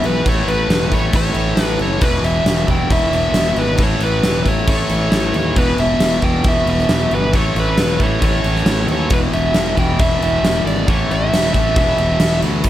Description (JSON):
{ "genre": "hard rock", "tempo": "136 BPM", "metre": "4/4", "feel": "straight", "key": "unclear", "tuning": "A4 = 436 Hz", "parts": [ { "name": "dark smooth lead guitar", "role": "melody", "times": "0.0-12.4 s", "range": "B4 to G5", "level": "-20 LUFS", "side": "equal", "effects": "overdrive" }, { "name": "cranked stack guitar", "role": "riff", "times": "0.0-12.7 s", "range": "E2 to A3", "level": "-22 LUFS", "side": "left 1 dB", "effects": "overdrive" }, { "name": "tight distorted guitar", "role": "riff", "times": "0.0-12.6 s", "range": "E2 to A3", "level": "-24 LUFS", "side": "right 1 dB", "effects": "distortion" }, { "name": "fuzz fingered electric bass", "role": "bass", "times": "0.0-12.7 s", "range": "E1 to D#2", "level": "-20 LUFS", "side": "equal", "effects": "overdrive" }, { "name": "huge arena drum kit", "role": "drums", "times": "0.0-12.7 s", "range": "crash cymbal, kick drum, snare drum", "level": "-18 LUFS", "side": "equal", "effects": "none" } ], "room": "small room ambience", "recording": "none", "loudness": "-14 LUFS", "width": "side -13 dB against mid", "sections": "0.0-12.6 A section", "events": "none", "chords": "0.2 A; 2.0 E5; 3.8 A; 5.6 E5; 7.3 A; 9.1 E5; 10.9 A5; 11.8 E5" }